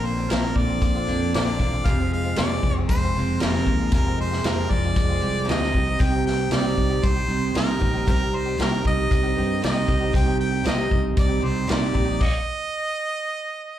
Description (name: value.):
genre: folk rock and heartland rock.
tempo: 116 BPM.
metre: 4/4.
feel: straight.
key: unclear.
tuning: A4 = 437 Hz.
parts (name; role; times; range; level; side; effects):
bright harmonica; melody; 0.0-13.8 s; Bb4 to G5; -27 LUFS; right 1 dB; slapback echo.
picked swing-style acoustic guitar; accompaniment; 0.0-12.2 s; F2 to G4; -30 LUFS; left 2 dB; slapback echo.
electric guitar through a small old amp; riff; 0.0-12.2 s; F2 to C4; -28 LUFS; right 3 dB; phaser, slapback echo.
modern bright fingered electric bass; bass; 0.0-12.2 s; E1 to G2; -25 LUFS; equal; none.
vintage drum kit; drums; 0.3-12.3 s; crash cymbal, hi-hat, kick drum, snare drum; -23 LUFS; equal; none.
room: light reverb, studio reverb.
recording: live gig heard through the venue's PA, club reverb.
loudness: -20 LUFS.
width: side -11 dB against mid.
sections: 0.0-13.8 A section.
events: stop 12.2-13.8.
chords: 0.0 Bbadd9; 1.9 Fm; 5.7 Cm.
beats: 0.31 0.82 1.34 | 1.86 2.38 2.90 3.41 | 3.93 4.45 4.97 5.49 | 6.00 6.52 7.04 7.56 | 8.07 8.59 9.11 9.63 | 10.15 10.66 11.18 11.70 | 12.22 12.73 13.25 13.77.